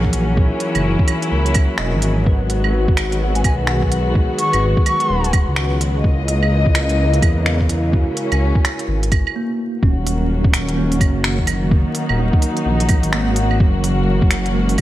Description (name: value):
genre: future garage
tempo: 127 BPM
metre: 4/4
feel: swing 62% on 16ths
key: unclear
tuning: A4 = 440 Hz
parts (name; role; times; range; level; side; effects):
- bell-like tine electric piano; accompaniment; 0.0-14.8 s; F#3 to D#5; -26 LUFS; right 2 dB; fast stereo tremolo, sidechain pumping, ping-pong delay
- warm studio string section; sustained chords; 0.0-14.8 s; C#3 to D#5; -22 LUFS; left 2 dB; sidechain pumping
- dark detuned saw bass; bass; 0.0-14.8 s; D#1 to E2; -19 LUFS; equal; sidechain pumping
- electronic kick drum; drums; 0.0-14.8 s; none; -16 LUFS; equal; studio ambience
- organic electronic drum kit; drums; 0.1-14.8 s; claves, finger snaps, hi-hat; -23 LUFS; right 3 dB; studio ambience
- wooden flute; melody; 3.4-5.3 s; G#5 to C#6; -22 LUFS; equal; vintage 12-bit sampler grit, ping-pong delay
room: light reverb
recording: vinyl crackle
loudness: -15 LUFS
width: side -14 dB against mid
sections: 0.0-9.8 A section; 9.8-14.8 B section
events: break 9.3-9.8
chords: 0.0 F#7; 2.3 G#m7; 6.0 C#m69; 9.8 D#m7; 13.6 F#7